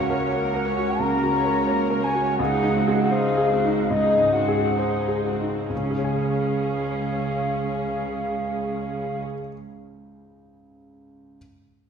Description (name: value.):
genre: classical, romantic movement for piano and orchestra.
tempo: 60-90 BPM.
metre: 4/4.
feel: rubato.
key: Db major.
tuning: A4 = 440 Hz.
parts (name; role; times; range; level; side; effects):
bright grand piano; melody; 0.0-11.4 s; Db2 to Ab5; -25 LUFS; left 1 dB; none.
mellow concert flute; second line; 0.0-9.2 s; Eb5 to Bb5; -26 LUFS; left 2 dB; none.
rich studio viola section; accompaniment; 0.0-9.2 s; Bb3 to Db5; -29 LUFS; equal; none.
rich chamber cello section; bass; 0.0-9.2 s; Db2; -30 LUFS; right 5 dB; none.
room: wet scoring stage reverb, RT60 1.4 s.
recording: heard from further back in the room.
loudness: -21 LUFS.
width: side -7 dB against mid.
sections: 0.0-5.7 A section; 5.7-8.9 B section.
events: slowing down 0.0-5.7.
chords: 0.0 Gb/Db; 2.4 Ab7/Db; 5.7 Db.